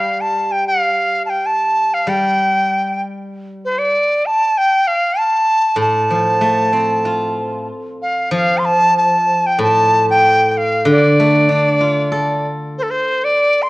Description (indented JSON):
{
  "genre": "chinese traditional",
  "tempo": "96 BPM",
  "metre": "4/4",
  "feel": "rubato",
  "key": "A jue mode",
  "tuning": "A4 = 440 Hz",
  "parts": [
    { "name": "bright reedy dizi", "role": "melody", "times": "0.0-13.7 s", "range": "A4 to C6", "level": "-14 LUFS", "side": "equal", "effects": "none" },
    { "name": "steel-string zither", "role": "accompaniment", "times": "0.0-13.4 s", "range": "A2 to A4", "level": "-19 LUFS", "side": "equal", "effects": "none" }
  ],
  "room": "moderate recital hall reverb, RT60 1.4 s",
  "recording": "worn, warbling old tape, cassette tape, warbly pitch drift",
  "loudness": "-13 LUFS",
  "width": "side -20 dB against mid",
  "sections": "0.0-8.3 A section; 8.3-13.7 B section",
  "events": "none",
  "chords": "none"
}